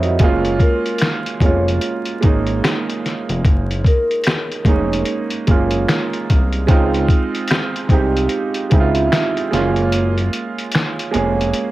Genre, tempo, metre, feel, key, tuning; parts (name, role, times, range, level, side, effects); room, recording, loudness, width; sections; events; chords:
lo-fi hip hop; 74 BPM; 4/4; swing 63% on 16ths; Gb lydian; A4 = 440 Hz
clear upright piano; accompaniment; 0.0-11.7 s; G3 to D#5; -19 LUFS; right 4 dB; low-pass filter, cassette tape
fat analog bass; bass; 0.0-11.5 s; F1 to F2; -20 LUFS; equal
lo-fi sampler-style drum kit; drums; 0.0-11.7 s; finger snaps, hi-hat, kick drum, snare drum; -17 LUFS; equal; cassette tape
vibraphone with soft mallets; melody; 0.6-4.5 s; Bb4 to Db5; -24 LUFS; left 2 dB; low-pass filter, cassette tape, tape echo
light reverb, digital ambience; home recording on cassette, vinyl crackle; -15 LUFS; side -16 dB against mid
0.0-11.7 A section
break 9.9-11.7
0.2 Gbmaj9; 6.7 Dbmaj9; 9.5 Gbmaj9